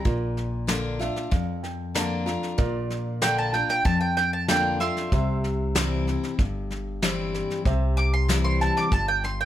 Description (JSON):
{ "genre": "honky-tonk and classic country", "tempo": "95 BPM", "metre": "4/4", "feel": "straight", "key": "C mixolydian", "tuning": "A4 = 442 Hz", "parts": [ { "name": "mandolin", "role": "melody", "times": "0.0-9.4 s", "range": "E5 to D6", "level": "-25 LUFS", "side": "right 3 dB", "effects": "plate reverb" }, { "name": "picked steel-string acoustic guitar", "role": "accompaniment", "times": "0.0-9.4 s", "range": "F2 to F4", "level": "-28 LUFS", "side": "left 4 dB", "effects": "none" }, { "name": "warm concert grand piano", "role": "accompaniment", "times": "0.1-9.4 s", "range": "F4 to Bb5", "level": "-35 LUFS", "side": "right 4 dB", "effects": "none" }, { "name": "upright bass", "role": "bass", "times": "0.1-9.4 s", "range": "G1 to F2", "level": "-28 LUFS", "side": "equal", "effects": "none" }, { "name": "soft brush drum kit", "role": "drums", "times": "0.1-9.3 s", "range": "hi-hat, kick drum, snare drum", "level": "-26 LUFS", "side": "equal", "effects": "none" } ], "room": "light reverb", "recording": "none", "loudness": "-22 LUFS", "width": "side -12 dB against mid", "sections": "0.0-9.4 A section", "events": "mandolin solo 0.0-9.4; grand piano fill 0.7-2.6", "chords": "0.1 Bb; 5.1 C" }